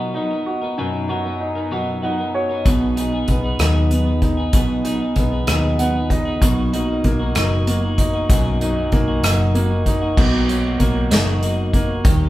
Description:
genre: six-eight pop ballad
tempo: 64 BPM (dotted quarters)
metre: 6/8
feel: straight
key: unclear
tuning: A4 = 440 Hz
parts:
  - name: clear grand piano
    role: accompaniment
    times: 0.0-12.3 s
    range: F#2 to F#5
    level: -21 LUFS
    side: right 1 dB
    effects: none
  - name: twelve-string electric guitar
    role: arpeggios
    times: 0.0-12.3 s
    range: B2 to A#4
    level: -25 LUFS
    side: left 2 dB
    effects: none
  - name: vintage muted fingered electric bass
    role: bass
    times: 2.7-12.3 s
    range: F#1 to D#2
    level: -21 LUFS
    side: equal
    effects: none
  - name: unplugged drum kit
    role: drums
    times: 2.7-12.2 s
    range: crash cymbal, hi-hat, kick drum, rim click, snare drum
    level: -19 LUFS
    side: equal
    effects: none
room: moderate large studio reverb, RT60 1.3 s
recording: band playing live in one room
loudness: -16 LUFS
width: side -15 dB against mid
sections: 0.0-10.2 A section; 10.2-12.3 B section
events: grand piano fill 1.7-2.7, 5.5-6.4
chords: 0.0 Bmaj7; 2.7 G#m7/B; 6.4 Bmaj7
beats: | 0.78 1.72 | 2.66 3.60 | 4.54 5.48 | 6.42 7.36 | 8.30 9.24 | 10.18 11.11 | 12.05

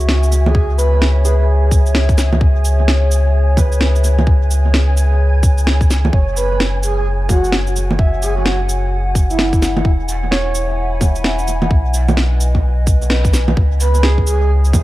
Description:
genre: future garage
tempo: 129 BPM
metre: 4/4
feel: swing 62% on 16ths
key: C# minor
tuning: A4 = 437 Hz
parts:
  - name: warm upright piano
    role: accompaniment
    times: 0.0-14.8 s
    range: F#4 to E5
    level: -28 LUFS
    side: right 3 dB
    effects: sidechain pumping, analog delay
  - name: warbly tape-like pad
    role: sustained chords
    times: 0.0-14.8 s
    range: E4 to B5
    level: -25 LUFS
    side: left 1 dB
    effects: chorus, built-in reverb, vintage 12-bit sampler grit, sidechain pumping
  - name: warm sub bass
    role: bass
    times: 0.0-14.8 s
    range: E1 to C#2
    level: -15 LUFS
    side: equal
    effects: sidechain pumping
  - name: electronic shaker, snare drum and bongos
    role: drums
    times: 0.0-14.8 s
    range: none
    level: -20 LUFS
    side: right 1 dB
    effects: studio reverb, tape echo
  - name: flickering grainy texture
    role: texture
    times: 0.0-13.6 s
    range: G#5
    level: -30 LUFS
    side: right 3 dB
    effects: built-in reverb
  - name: breathy flute-like synth lead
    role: melody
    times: 0.5-1.4, 6.4-9.9, 13.8-14.5 s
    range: E4 to B4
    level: -22 LUFS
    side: right 1 dB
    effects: analog chorus, analog delay
  - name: electronic kick drum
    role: drums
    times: 0.5-14.8 s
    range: none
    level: -14 LUFS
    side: equal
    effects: studio reverb
room: light reverb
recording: echo-heavy mix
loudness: -12 LUFS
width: side -16 dB against mid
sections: 0.0-13.6 A section; 13.6-14.8 B section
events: band accent 13.1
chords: 0.0 C#m; 6.1 F#sus2; 9.9 Eadd9; 11.7 B; 13.6 C#m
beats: 0.08 | 0.55 1.01 1.48 1.94 | 2.41 2.87 3.34 3.80 | 4.27 4.73 5.20 5.67 | 6.13 6.59 7.06 7.53 | 7.99 8.46 8.92 9.39 | 9.85 10.32 10.78 11.25 | 11.71 12.18 12.64 13.11 | 13.57 14.04 14.50

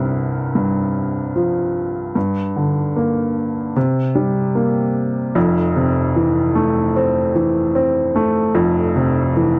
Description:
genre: pop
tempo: 75 BPM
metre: 4/4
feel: straight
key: F major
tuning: A4 = 440 Hz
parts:
  - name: clear upright piano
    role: solo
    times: 0.0-9.6 s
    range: F1 to C4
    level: -18 LUFS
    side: equal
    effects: none
room: little or no reverb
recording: dry, close 1970s-style studio recording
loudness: -18 LUFS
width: mono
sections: 0.0-5.4 A section; 5.4-9.6 B section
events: none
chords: 0.0 Csus4; 2.2 Gm; 3.8 C5; 5.4 Fmaj7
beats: 0.56 1.36 | 2.16 2.96 3.76 4.56 | 5.36 6.16 6.96 7.76 | 8.56 9.36

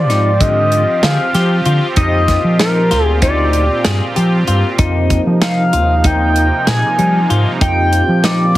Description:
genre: progressive instrumental, band music in an uneven meter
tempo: 192 BPM (eighths)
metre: 9/8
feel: straight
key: F dorian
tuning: A4 = 441 Hz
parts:
  - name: sync lead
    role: melody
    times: 0.0-8.6 s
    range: Bb4 to Ab5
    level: -16 LUFS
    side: equal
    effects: chorus
  - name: sweeping resonant pad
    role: accompaniment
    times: 0.0-8.6 s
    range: Bb2 to G4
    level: -20 LUFS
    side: right 2 dB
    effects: chorus
  - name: overdriven fingered electric bass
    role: bass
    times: 0.0-8.6 s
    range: D2 to F3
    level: -15 LUFS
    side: equal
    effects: none
  - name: clean electric guitar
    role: arpeggios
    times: 0.1-8.5 s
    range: D3 to Ab4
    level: -21 LUFS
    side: left 6 dB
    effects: none
  - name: modern studio drum kit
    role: drums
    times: 0.1-8.6 s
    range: hi-hat, kick drum, snare drum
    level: -18 LUFS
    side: right 1 dB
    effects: none
room: light reverb, studio reverb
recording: heavily compressed radio sound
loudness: -11 LUFS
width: side -15 dB against mid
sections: 0.0-8.6 A section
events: none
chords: 0.0 Fm13; 2.0 Ebmaj7; 4.8 Fm7; 7.6 Ebmaj7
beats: 0.10 0.41 0.72 1.03 1.35 1.66 | 1.97 2.29 2.60 2.91 3.23 3.54 3.85 4.17 4.48 | 4.79 5.11 5.42 5.73 6.05 6.36 6.67 6.99 7.30 | 7.61 7.93 8.24 8.55

